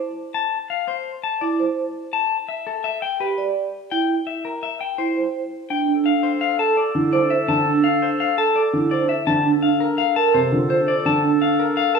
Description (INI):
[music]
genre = classical, minimalist pattern music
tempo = 168 BPM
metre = 5/4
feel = straight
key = F major from 5.9 s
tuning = A4 = 440 Hz
[part]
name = vibraphone with soft mallets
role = arpeggios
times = 0.0-12.0 s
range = D4 to D5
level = -21 LUFS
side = right 5 dB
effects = none
[part]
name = clean electric guitar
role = melody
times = 0.3-12.0 s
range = A4 to A5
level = -22 LUFS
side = left 9 dB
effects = none
[part]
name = bright clarinet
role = second line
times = 5.9-12.0 s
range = A4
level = -28 LUFS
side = right 3 dB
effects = none
[part]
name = warm baby grand piano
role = accompaniment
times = 6.9-11.3 s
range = C3 to D3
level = -24 LUFS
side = left 1 dB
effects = none
[sound]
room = wet recital hall reverb, RT60 1.5 s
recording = none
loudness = -18 LUFS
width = side -5 dB against mid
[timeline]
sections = 0.0-5.9 A section; 5.9-12.0 B section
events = none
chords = 0.0 D7(no3) (rootless); 2.3 G5; 4.1 C; 5.9 Fmaj7; 9.4 Bbmaj7 (rootless)